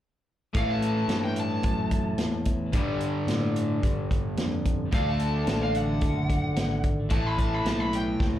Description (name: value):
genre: blues rock power trio and southern rock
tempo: 110 BPM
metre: 4/4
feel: straight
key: unclear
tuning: A4 = 440 Hz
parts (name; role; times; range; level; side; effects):
- overdriven semi-hollow guitar; riff; 0.5-8.4 s; G2 to D4; -29 LUFS; equal; slapback echo
- growling fingered electric bass; bass; 0.5-8.4 s; F#1 to A2; -30 LUFS; equal; overdrive
- vintage drum kit; drums; 0.5-8.3 s; hi-hat, kick drum, snare drum; -28 LUFS; equal; none
- lead guitar through a small cranked amp; melody; 0.6-8.2 s; F5 to B5; -32 LUFS; left 2 dB; overdrive, slapback echo, plate reverb
room: light reverb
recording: live gig heard through the venue's PA, club reverb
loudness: -24 LUFS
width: side -12 dB against mid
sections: 0.6-8.4 A section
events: drum fill 8.2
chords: 0.6 A5; 2.7 G5; 4.9 D; 7.1 A